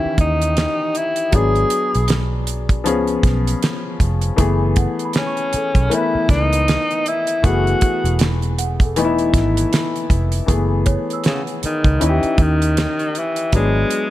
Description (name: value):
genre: lush 1970s-style soul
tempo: 79 BPM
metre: 4/4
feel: swing 58% on 16ths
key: F# dorian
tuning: A4 = 439 Hz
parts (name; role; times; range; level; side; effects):
- warm tenor saxophone; melody; 0.0-14.1 s; C#3 to G#4; -20 LUFS; equal; none
- clear grand piano; accompaniment; 0.0-14.1 s; D#3 to B4; -22 LUFS; left 4 dB; none
- vintage muted fingered electric bass; bass; 0.1-13.8 s; E1 to D#2; -19 LUFS; right 1 dB; none
- damped 70s drum kit; drums; 0.2-14.1 s; hi-hat, kick drum, snare drum; -19 LUFS; right 1 dB; none
- small celesta; texture; 4.8-12.8 s; A4 to E6; -32 LUFS; right 5 dB; none
room: light reverb, small room ambience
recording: none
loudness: -15 LUFS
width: side -14 dB against mid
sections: 0.0-10.5 A section; 10.5-14.1 A section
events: none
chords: 0.0 D#7b9; 1.3 G#m7b5; 2.9 C#7; 4.4 F#m11; 12.0 D#7b9; 13.5 G#m7b5